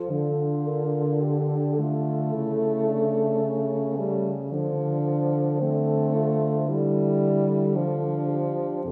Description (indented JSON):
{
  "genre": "classical, lyrical piece for horn quartet",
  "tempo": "55 BPM",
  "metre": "4/4",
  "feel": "rubato",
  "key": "unclear",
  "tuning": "A4 = 441 Hz",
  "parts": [
    { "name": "mellow French horn", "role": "melody", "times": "0.0-8.9 s", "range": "G4 to C5", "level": "-35 LUFS", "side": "equal", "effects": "none" },
    { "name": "mellow French horn", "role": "second line", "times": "0.0-8.9 s", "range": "A3 to G4", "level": "-35 LUFS", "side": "equal", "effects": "none" },
    { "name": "mellow French horn", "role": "accompaniment", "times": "0.0-8.9 s", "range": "C3 to A3", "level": "-28 LUFS", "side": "equal", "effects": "none" },
    { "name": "warm French horn", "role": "bass", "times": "0.1-8.9 s", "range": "F2 to D3", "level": "-30 LUFS", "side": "equal", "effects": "none" }
  ],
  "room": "wet scoring stage reverb, RT60 1.6 s",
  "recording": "heard from further back in the room",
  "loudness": "-25 LUFS",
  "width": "mono",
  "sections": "0.0-8.9 A section",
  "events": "none",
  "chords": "0.1 Dm; 2.3 A/C#; 4.5 Dm7"
}